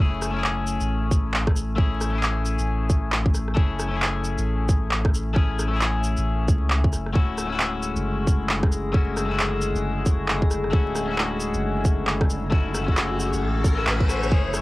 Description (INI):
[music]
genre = future garage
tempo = 134 BPM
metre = 4/4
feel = swing 61% on 16ths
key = F# minor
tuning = A4 = 439 Hz
[part]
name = clean electric guitar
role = accompaniment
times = 0.0-14.6 s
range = A3 to G#4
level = -28 LUFS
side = left 3 dB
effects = sidechain pumping, cassette tape, analog delay
[part]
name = soft dub sub bass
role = bass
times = 0.0-14.6 s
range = D1 to C#2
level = -27 LUFS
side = equal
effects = sidechain pumping
[part]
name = electronic rim click, shaker and handclaps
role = drums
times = 0.2-14.6 s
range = none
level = -26 LUFS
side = right 1 dB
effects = cassette tape
[part]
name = electronic kick drum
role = drums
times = 1.1-14.4 s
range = none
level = -20 LUFS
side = equal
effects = cassette tape
[part]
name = warbly tape-like pad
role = sustained chords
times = 7.9-14.6 s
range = D3 to A3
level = -40 LUFS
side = right 3 dB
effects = none
[part]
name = drifting glass-harmonics texture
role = texture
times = 7.7-14.3 s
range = G#3 to G#4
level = -31 LUFS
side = left 1 dB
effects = chorus, built-in reverb, cassette tape
[part]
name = riser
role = sound effects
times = 12.3-14.3 s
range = none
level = -32 LUFS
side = equal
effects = none
[sound]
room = light reverb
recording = home recording on cassette, vinyl crackle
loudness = -20 LUFS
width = side -19 dB against mid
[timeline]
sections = 0.0-14.3 A section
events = riser 12.3-14.3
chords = 0.0 F#m7; 7.2 Dmaj7